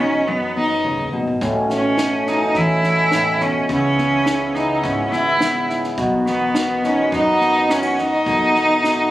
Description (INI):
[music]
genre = folk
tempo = 105 BPM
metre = 4/4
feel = straight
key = unclear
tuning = A4 = 441 Hz
[part]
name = rich cello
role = second line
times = 0.0-9.1 s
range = B3 to E4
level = -18 LUFS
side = right 1 dB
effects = none
[part]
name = fingerpicked steel-string acoustic guitar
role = accompaniment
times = 0.0-9.1 s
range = F#2 to A4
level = -22 LUFS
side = left 1 dB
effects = none
[part]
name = upright bass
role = bass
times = 0.0-9.1 s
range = C#1 to F#2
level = -32 LUFS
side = equal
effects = none
[part]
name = mellow accordion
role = sustained chords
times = 1.4-9.1 s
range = B2 to F#4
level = -23 LUFS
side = equal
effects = none
[part]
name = compact cocktail drum kit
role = drums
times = 1.4-9.0 s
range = kick drum, snare drum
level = -27 LUFS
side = equal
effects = none
[sound]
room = moderate studio reverb, RT60 0.9 s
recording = recorded on a phone in the room, club reverb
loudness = -16 LUFS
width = side -15 dB against mid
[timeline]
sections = 0.0-9.1 A section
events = cello solo 0.0-9.1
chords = 0.0 B; 1.4 Aadd9; 3.7 C#m7; 6.0 B